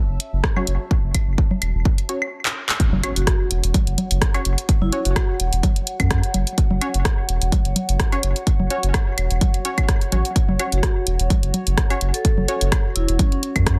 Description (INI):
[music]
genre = minimal techno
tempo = 127 BPM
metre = 4/4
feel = swing 54% on 16ths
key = F# minor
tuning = A4 = 438 Hz
[part]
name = bubbling stepped-filter texture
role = texture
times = 0.0-2.4 s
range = C#4 to E5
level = -48 LUFS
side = equal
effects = chorus, built-in reverb, sidechain pumping
[part]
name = warbly tape-like pad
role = texture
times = 0.0-13.8 s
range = F#4 to A5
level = -34 LUFS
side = equal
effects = chorus, built-in reverb, sidechain pumping
[part]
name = saturated sub bass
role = bass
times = 0.1-13.8 s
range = E1 to F#2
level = -23 LUFS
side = equal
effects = sidechain pumping
[part]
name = house drum kit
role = drums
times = 0.2-13.8 s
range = handclaps, hi-hat, rim click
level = -27 LUFS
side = equal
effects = soft clipping on snare
[part]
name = electronic kick drum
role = drums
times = 0.4-13.8 s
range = none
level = -21 LUFS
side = equal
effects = none
[part]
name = filtered dub chord stab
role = stabs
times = 0.6-12.6 s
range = C#4 to C#5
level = -31 LUFS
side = equal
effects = chorus, delay
[part]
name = congas and claves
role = percussion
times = 0.6-13.6 s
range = none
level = -29 LUFS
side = equal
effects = delay
[part]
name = impact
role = sound effects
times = 2.9-4.7 s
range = none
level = -34 LUFS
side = equal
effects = none
[part]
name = vibraphone with medium mallets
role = melody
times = 3.2-5.2, 10.7-13.4 s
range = C#4 to A4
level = -31 LUFS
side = equal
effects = delay
[sound]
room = digital ambience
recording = dense, heavily limited modern master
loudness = -20 LUFS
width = mono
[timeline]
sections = 0.0-2.8 A section; 2.8-13.8 B section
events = drum fill 2.4-2.8; drop 2.8-13.8; impact 2.8-4.7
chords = 0.0 F#5